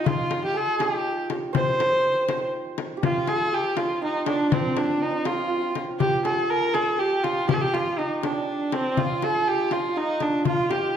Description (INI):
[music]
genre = Persian modal ensemble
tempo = 81 BPM (dotted quarters)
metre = 6/8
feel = straight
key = C avaz esfahan, G dastgah shur from 3.0 s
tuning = A4 = 440 Hz
[part]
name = clear kamancheh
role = melody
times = 0.0-11.0 s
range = C4 to C5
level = -24 LUFS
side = equal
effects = none
[part]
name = santur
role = second line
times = 0.0-11.0 s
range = C4 to C5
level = -28 LUFS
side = right 4 dB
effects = none
[part]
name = frame drum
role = percussion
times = 0.1-10.8 s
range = none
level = -28 LUFS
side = left 6 dB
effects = none
[sound]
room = wet recital hall reverb, RT60 1.3 s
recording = none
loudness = -22 LUFS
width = side -8 dB against mid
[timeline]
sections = 0.0-3.0 A section; 3.0-11.0 B section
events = none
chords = none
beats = | 0.06 0.80 | 1.54 2.29 | 3.03 3.77 | 4.52 5.26 | 6.00 6.74 | 7.49 8.23 | 8.97 9.71 | 10.45